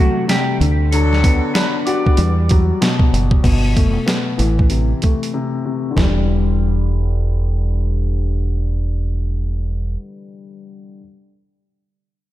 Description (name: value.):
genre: hip hop, boom-bap hip-hop.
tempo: 95 BPM.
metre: 4/4.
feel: swing 62% on 16ths.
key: E minor.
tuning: A4 = 442 Hz.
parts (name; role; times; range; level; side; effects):
clean electric guitar; melody; 0.0-0.6 s; F#3 to G4; -23 LUFS; right 1 dB; lush chorus, high-pass filter, low-pass filter, analog delay.
dark baby grand piano; accompaniment; 0.0-11.0 s; B2 to F#4; -21 LUFS; left 4 dB; cassette tape, high-pass filter, low-pass filter.
boom bap sampler-style drum kit; drums; 0.3-6.2 s; crash cymbal, hi-hat, kick drum, snare drum; -17 LUFS; right 1 dB; none.
deep dub fingered electric bass; bass; 0.6-10.0 s; E1 to E2; -17 LUFS; right 1 dB; none.
warm horn section; stabs; 0.9-2.5 s; F#3 to D5; -24 LUFS; equal; high-pass filter, low-pass filter, analog delay.
room: light reverb, digital ambience.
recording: none.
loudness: -15 LUFS.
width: side -14 dB against mid.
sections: 0.0-3.4 A section; 3.4-6.0 B section; 6.0-8.5 C section.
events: break 5.3-6.0.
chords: 0.0 Am; 0.6 D6; 2.2 Emadd9; 3.4 Gadd9; 4.4 Am; 6.0 Em7.